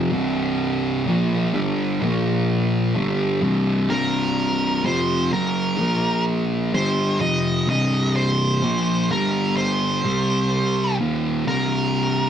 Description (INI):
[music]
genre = metal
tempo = 63 BPM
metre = 4/4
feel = straight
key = C minor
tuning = A4 = 440 Hz
[part]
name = thick fuzz guitar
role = riff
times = 0.0-12.3 s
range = C2 to C4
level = -20 LUFS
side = equal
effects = distortion
[part]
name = octave-fuzz lead guitar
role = melody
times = 3.9-12.3 s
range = Bb4 to Eb5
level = -24 LUFS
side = right 2 dB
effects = distortion
[sound]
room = wet studio reverb, RT60 0.6 s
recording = rough rehearsal-room recording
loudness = -19 LUFS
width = side -9 dB against mid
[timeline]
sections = 0.0-3.9 A section; 3.9-12.3 B section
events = none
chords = 0.0 C5; 2.0 Bb5; 3.0 C5; 5.8 Bb5; 6.7 C5; 9.1 G5; 10.1 Cm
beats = | 0.13 1.07 2.01 2.96 | 3.90 4.85 5.79 6.74 | 7.69 8.63 9.58 10.53 | 11.48